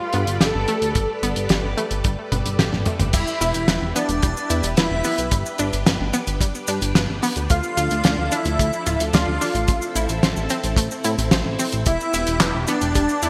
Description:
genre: synthwave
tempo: 110 BPM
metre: 4/4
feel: straight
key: unclear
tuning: A4 = 439 Hz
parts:
  - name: unison lead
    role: melody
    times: 0.0-13.3 s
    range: D4 to A4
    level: -28 LUFS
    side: equal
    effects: lush chorus, delay
  - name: string machine, full ensemble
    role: sustained chords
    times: 0.0-13.3 s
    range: F3 to D5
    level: -32 LUFS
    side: equal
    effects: ensemble chorus, sidechain pumping
  - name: unison pluck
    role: arpeggios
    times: 0.0-13.3 s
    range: G3 to D5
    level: -30 LUFS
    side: equal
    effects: delay
  - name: chorused synth bass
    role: bass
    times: 0.1-13.3 s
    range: D1 to A2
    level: -27 LUFS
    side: equal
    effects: none
  - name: damped 70s drum kit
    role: drums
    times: 0.1-13.3 s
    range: cabasa, crash cymbal, handclaps, hi-hat, snare drum, toms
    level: -24 LUFS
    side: equal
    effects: studio reverb, gated reverb
  - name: kick drum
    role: drums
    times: 1.0-13.1 s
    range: none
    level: -23 LUFS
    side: equal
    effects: studio reverb
  - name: airy dreamy lead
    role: second line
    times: 3.1-13.3 s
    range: D5 to F5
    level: -32 LUFS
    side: equal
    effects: chorus, cassette tape, delay
room: moderate plate reverb, RT60 1.9 s, small room ambience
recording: bright 1980s-style digital production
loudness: -21 LUFS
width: mono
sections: 0.0-3.1 A section; 3.1-13.3 B section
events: drum fill 2.3-3.1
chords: 0.0 Gadd9; 3.1 Em; 5.3 G; 7.5 Dm; 9.7 Am; 11.9 Em

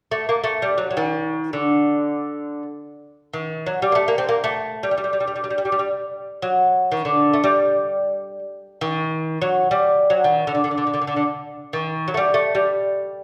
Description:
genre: persian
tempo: free time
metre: none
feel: none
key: G avaz esfahan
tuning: A4 = 440 Hz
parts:
  - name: lute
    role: solo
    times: 0.1-13.2 s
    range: D3 to C4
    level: -21 LUFS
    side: equal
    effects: none
room: wet recital hall reverb, RT60 1.3 s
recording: recorded in a church or concert hall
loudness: -21 LUFS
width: mono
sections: 0.0-13.2 A section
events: none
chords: none

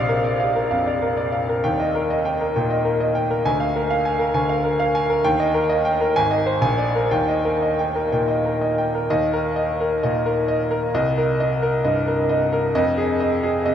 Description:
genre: classical, virtuoso piano study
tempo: 131 BPM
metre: 4/4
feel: rubato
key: Eb major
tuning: A4 = 440 Hz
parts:
  - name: bright grand piano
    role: solo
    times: 0.0-13.7 s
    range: Ab1 to Ab5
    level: -18 LUFS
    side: equal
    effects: none
room: wet huge ambient reverb, RT60 8.4 s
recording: in a vast, echoing space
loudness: -18 LUFS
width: side -9 dB against mid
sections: 0.0-9.1 A section; 9.1-13.7 B section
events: none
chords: 0.0 Bb; 1.6 Eb; 3.5 Bb7/D; 5.2 Eb; 6.2 Ab; 6.6 Bb7; 7.1 Eb; 9.1 Eb5; 10.9 Cm7; 12.8 Fm7

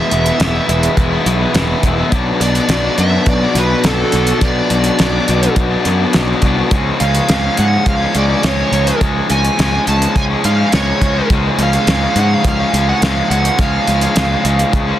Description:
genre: indie rock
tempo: 105 BPM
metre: 4/4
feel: straight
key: unclear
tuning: A4 = 438 Hz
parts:
  - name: smooth overdriven lead guitar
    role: melody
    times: 0.0-15.0 s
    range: A4 to A5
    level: -19 LUFS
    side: right 3 dB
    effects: digital delay
  - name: raw garage guitar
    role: riff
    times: 0.0-15.0 s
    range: B2 to E4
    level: -17 LUFS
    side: left 3 dB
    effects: overdrive, spring reverb
  - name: fuzz picked electric bass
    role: bass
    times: 0.1-14.9 s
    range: E1 to G#2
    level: -16 LUFS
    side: equal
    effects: overdrive
  - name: cloth-damped thuddy drum kit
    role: drums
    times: 0.1-14.9 s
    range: hi-hat, kick drum, snare drum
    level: -18 LUFS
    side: equal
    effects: none
room: light reverb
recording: dense, heavily limited modern master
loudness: -12 LUFS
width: side -12 dB against mid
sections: 0.0-15.0 A section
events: none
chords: 0.0 E; 2.1 Bm; 6.7 C#

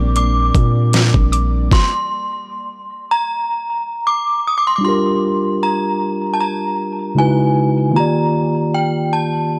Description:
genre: contemporary R&B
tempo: 77 BPM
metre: 4/4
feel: swing 54% on 16ths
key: G minor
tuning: A4 = 441 Hz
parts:
  - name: synth chime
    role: melody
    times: 0.0-9.6 s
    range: G5 to Eb6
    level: -22 LUFS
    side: equal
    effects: ensemble chorus, analog delay
  - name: mellow tine electric piano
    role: accompaniment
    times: 0.0-9.6 s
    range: Bb2 to D5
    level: -20 LUFS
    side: equal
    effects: none
  - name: ethereal airy pad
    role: sustained chords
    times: 0.0-1.7 s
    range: G3 to D5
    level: -34 LUFS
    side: equal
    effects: ensemble chorus, built-in reverb
  - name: long sustained 808-style bass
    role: bass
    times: 0.0-1.7 s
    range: Bb1 to Bb2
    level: -18 LUFS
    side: equal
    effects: none
  - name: smooth R&B drum kit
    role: drums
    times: 0.2-1.9 s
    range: hi-hat, kick drum, snare drum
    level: -16 LUFS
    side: equal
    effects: none
  - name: mallet-like synth pluck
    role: texture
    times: 1.3-2.1 s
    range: D6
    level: -28 LUFS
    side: equal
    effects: chorus, analog delay
room: little or no reverb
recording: dry, gritty hardware recording, cassette tape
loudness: -17 LUFS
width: mono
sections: 0.0-4.8 A section; 4.8-9.6 A section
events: stop 1.7-4.8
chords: 0.0 Bb6; 1.7 N.C.; 4.8 Gm7; 7.2 C#m11; 7.9 Ebmaj7

